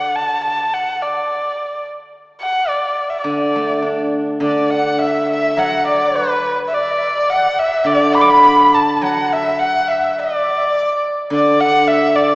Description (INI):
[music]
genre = chinese traditional, Chinese chamber ensemble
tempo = 105 BPM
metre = 2/4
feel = rubato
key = D gong mode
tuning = A4 = 439 Hz
[part]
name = dark erhu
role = melody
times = 0.0-12.3 s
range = B4 to D6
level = -16 LUFS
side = equal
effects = none
[part]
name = steel-string zither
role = accompaniment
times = 0.0-0.4, 3.2-12.3 s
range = D3 to D4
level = -19 LUFS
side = equal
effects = none
[part]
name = mellow hollow dizi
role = second line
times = 4.4-12.3 s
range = B4 to D6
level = -18 LUFS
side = equal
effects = none
[sound]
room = wet concert hall reverb, RT60 2.1 s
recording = heard from further back in the room, small speaker sound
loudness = -13 LUFS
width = side -22 dB against mid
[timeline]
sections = 0.0-4.4 A section; 4.4-12.3 B section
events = none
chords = none